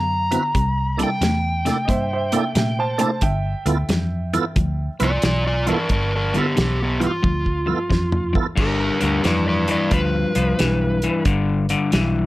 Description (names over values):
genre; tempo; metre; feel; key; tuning
electric blues shuffle; 90 BPM; 4/4; swing 66% on 8ths; G mixolydian; A4 = 440 Hz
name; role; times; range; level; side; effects
overdriven slide guitar; melody; 0.0-11.2 s; B3 to Bb5; -23 LUFS; right 1 dB; none
electric guitar at the edge of break-up; riff; 0.0-12.3 s; G2 to B3; -23 LUFS; left 3 dB; none
vintage muted fingered electric bass; bass; 0.0-12.3 s; G1 to Bb2; -23 LUFS; equal; none
tonewheel organ; accompaniment; 0.3-8.5 s; Bb3 to B4; -24 LUFS; right 5 dB; slow rotary speaker, overdrive, chorus vibrato
warm soul drum kit; drums; 0.3-12.1 s; crash cymbal, hi-hat, kick drum, snare drum, toms; -23 LUFS; equal; none
warm upright piano; second line; 1.9-4.9 s; C5 to A5; -26 LUFS; right 3 dB; none
room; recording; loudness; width
moderate club ambience, RT60 0.5 s; none; -18 LUFS; side -17 dB against mid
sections
0.0-8.6 A section; 8.6-12.3 B section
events
drum fill 7.2-8.6; electric slide guitar solo 8.6-12.3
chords
0.0 D13; 0.6 C13; 3.2 G13; 8.6 G6